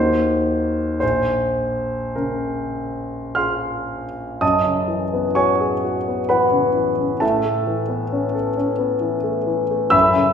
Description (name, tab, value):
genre	classical, impressionist solo piano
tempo	48-67 BPM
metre	3/4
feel	rubato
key	Bb minor, F# dorian from 4.4 s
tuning	A4 = 440 Hz
part	warm concert grand piano	solo	0.0-10.3 s	Bb1 to F6	-18 LUFS	left 1 dB	none
room	wet recital hall reverb, RT60 1.5 s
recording	heard from further back in the room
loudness	-18 LUFS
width	side -7 dB against mid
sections	0.0-4.4 A section; 4.4-10.3 B section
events	none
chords	0.0 Ebm6; 1.0 Bbm9; 4.4 F#m11; 7.2 Aadd9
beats	| 1.02 2.16 3.36 | 4.42 5.36 6.29 | 7.23 8.13 9.03 | 9.94